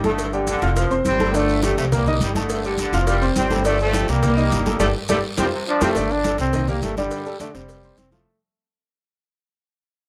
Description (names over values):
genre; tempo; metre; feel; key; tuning
latin, salsa; 208 BPM; 4/4; straight; G minor; A4 = 440 Hz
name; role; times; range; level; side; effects
brilliant trombone section; melody; 0.0-5.9 s; D3 to C4; -26 LUFS; equal; plate reverb
clear concert grand piano; accompaniment; 0.0-8.2 s; D3 to F6; -26 LUFS; equal; none
upright bass; bass; 0.0-8.2 s; F1 to F2; -26 LUFS; equal; none
congas; percussion; 0.0-8.3 s; none; -30 LUFS; equal; none
cowbell; percussion; 0.0-8.3 s; none; -34 LUFS; equal; none
maracas; percussion; 0.0-8.3 s; none; -38 LUFS; equal; none
bright trombone section; second line; 0.3-3.3, 5.5-5.9 s; C3 to G3; -28 LUFS; equal; none
guiro; percussion; 1.4-8.3 s; none; -38 LUFS; equal; none
brilliant trombone; melody; 5.7-8.4 s; G3 to D4; -26 LUFS; equal; none
room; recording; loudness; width
moderate small room reverb, RT60 0.5 s; none; -20 LUFS; mono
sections
0.0-6.0 A section; 6.0-8.3 B section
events
band accent 4.8-6.0; drum fill 5.1-6.0; fade-out 6.0-8.3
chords
0.2 Gsus2; 0.8 Fsus2; 1.3 Gsus2; 1.9 Cm7; 2.5 Gsus2; 3.1 Fsus2; 3.6 Gsus2; 4.2 Cm7; 4.8 Gsus2; 5.4 Fsus2; 6.0 Gsus2; 6.5 Cm7; 7.1 Gsus2; 7.7 Fsus2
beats
| 0.19 0.47 0.76 1.05 | 1.34 1.63 1.92 2.21 | 2.50 2.78 3.07 3.36 | 3.65 3.94 4.23 4.51 | 4.80 5.09 5.38 5.67 | 5.96 6.24 6.53 6.82 | 7.11 7.40 7.68 7.97